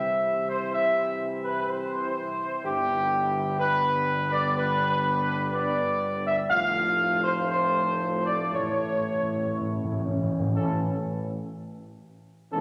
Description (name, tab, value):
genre	classical, ceremonial fanfare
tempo	62 BPM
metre	4/4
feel	straight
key	unclear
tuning	A4 = 440 Hz
part	mellow trumpet section	melody	0.0-12.6 s	G4 to F5	-28 LUFS	equal	none
part	warm French horn section	sustained chords	0.0-12.6 s	A3 to F4	-37 LUFS	equal	none
part	warm trombone section	sustained chords	0.0-12.6 s	A2 to A3	-38 LUFS	equal	none
part	mellow tuba	bass	0.0-12.6 s	E1 to C2	-37 LUFS	equal	none
part	timpani	percussion	8.5-10.5 s	A2	-33 LUFS	equal	none
room	wet concert hall reverb, RT60 2.0 s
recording	none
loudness	-26 LUFS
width	mono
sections	0.0-10.6 A section; 10.6-12.6 B section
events	timpani fill 8.5-10.6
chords	0.0 C; 2.6 G; 6.5 F; 8.5 A